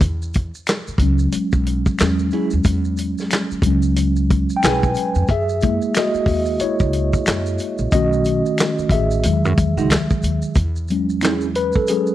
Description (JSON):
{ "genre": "R&B, neo-soul", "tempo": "91 BPM", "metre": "4/4", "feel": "swing 59% on 16ths", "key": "E major", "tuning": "A4 = 440 Hz", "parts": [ { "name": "mellow tine electric piano", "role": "accompaniment", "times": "0.0-12.1 s", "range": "D#3 to G#5", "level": "-19 LUFS", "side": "left 1 dB", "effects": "medium stereo tremolo" }, { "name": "upright bass", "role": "bass", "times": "0.0-11.7 s", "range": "A1 to F#2", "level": "-21 LUFS", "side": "equal", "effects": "tube saturation" }, { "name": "warm soul drum kit", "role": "drums", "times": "0.0-12.1 s", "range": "handclaps, hi-hat, kick drum, snare drum", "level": "-19 LUFS", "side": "equal", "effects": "none" }, { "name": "maracas and finger snaps", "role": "percussion", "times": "0.0-12.1 s", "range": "none", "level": "-33 LUFS", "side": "left 1 dB", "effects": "none" }, { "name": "hollow-body jazz guitar", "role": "second line", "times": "2.3-4.9, 9.8-11.5 s", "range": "G#3 to G#4", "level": "-24 LUFS", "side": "right 6 dB", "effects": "none" } ], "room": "light reverb, studio reverb", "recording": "worn, warbling old tape, cassette tape, warbly pitch drift", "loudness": "-16 LUFS", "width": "side -13 dB against mid", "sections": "0.0-10.6 A section; 10.6-12.1 B section", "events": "tine electric piano solo 0.0-10.6, 10.6-12.1", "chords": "0.0 E6; 5.3 F#9; 7.9 B7; 9.2 Emaj9; 10.6 E6" }